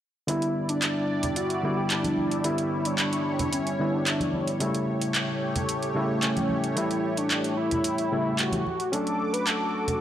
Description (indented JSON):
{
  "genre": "nu-disco, nu disco",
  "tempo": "111 BPM",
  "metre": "4/4",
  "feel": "straight",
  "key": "E dorian",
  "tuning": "A4 = 440 Hz",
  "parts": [
    { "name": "wide unison lead", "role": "melody", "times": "0.3-10.0 s", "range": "C#4 to B4", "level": "-29 LUFS", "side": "equal", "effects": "cassette tape, analog delay" },
    { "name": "overdriven reed electric piano", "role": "accompaniment", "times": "0.3-10.0 s", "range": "C#3 to E4", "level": "-29 LUFS", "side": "left 1 dB", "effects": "vintage 12-bit sampler grit, low-pass filter" },
    { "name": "lush unison pad", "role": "sustained chords", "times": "0.5-10.0 s", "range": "G3 to D6", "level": "-31 LUFS", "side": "equal", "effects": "chorus, phaser" },
    { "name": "house drum kit", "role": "drums", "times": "0.3-10.0 s", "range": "handclaps, hi-hat", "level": "-29 LUFS", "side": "right 1 dB", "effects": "none" },
    { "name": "congas", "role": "percussion", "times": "1.2-10.0 s", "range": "none", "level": "-34 LUFS", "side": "right 1 dB", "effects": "none" }
  ],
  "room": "light reverb, digital ambience",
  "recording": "dry, gritty hardware recording, cassette tape",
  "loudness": "-24 LUFS",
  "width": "side -11 dB against mid",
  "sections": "0.3-10.0 A section",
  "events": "none",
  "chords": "0.3 Em7; 4.6 A7; 8.7 Dmaj7"
}